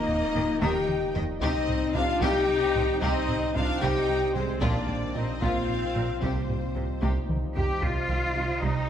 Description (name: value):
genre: cinematic, hybrid orchestral and electronic film score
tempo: 75 BPM (dotted quarters)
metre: 6/8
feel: straight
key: C minor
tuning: A4 = 440 Hz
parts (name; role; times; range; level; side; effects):
- warm symphonic violin section; melody; 0.0-8.9 s; F4 to Eb5; -38 LUFS; left 3 dB; none
- warm symphonic violin section; second line; 0.0-8.9 s; C5 to G5; -34 LUFS; left 1 dB; none
- rich symphonic viola section; accompaniment; 0.0-8.9 s; C3 to Eb4; -35 LUFS; right 1 dB; none
- deep dark ambient pad; sustained chords; 0.0-8.9 s; G3 to Eb5; -36 LUFS; left 1 dB; chorus, built-in reverb
- mellow French horn section; sustained chords; 0.0-7.0 s; C4 to G4; -28 LUFS; left 3 dB; none
- pure sine sub bass; bass; 0.0-8.9 s; Eb1 to C2; -36 LUFS; equal; none
- chorused synth bass; riff; 0.1-8.8 s; C2 to Bb2; -34 LUFS; right 1 dB; none
- taiko ensemble; drums; 0.1-8.9 s; none; -34 LUFS; equal; none
- harp-like synth pluck; arpeggios; 0.4-8.8 s; C3 to C5; -37 LUFS; right 2 dB; none
- rich symphonic cello section; bass; 0.4-8.9 s; Bb2 to G4; -33 LUFS; right 1 dB; none
- rich symphonic double bass section; bass; 0.4-8.7 s; Bb1 to Eb2; -36 LUFS; right 3 dB; none
room: moderate scoring stage reverb, RT60 1.6 s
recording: none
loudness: -24 LUFS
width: side -9 dB against mid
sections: 0.0-7.8 A section; 7.8-8.9 B section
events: drum fill 0.6-1.4, 7.0-7.8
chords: 0.0 Eb; 1.4 Cm; 4.6 Bbsus2; 6.2 Cm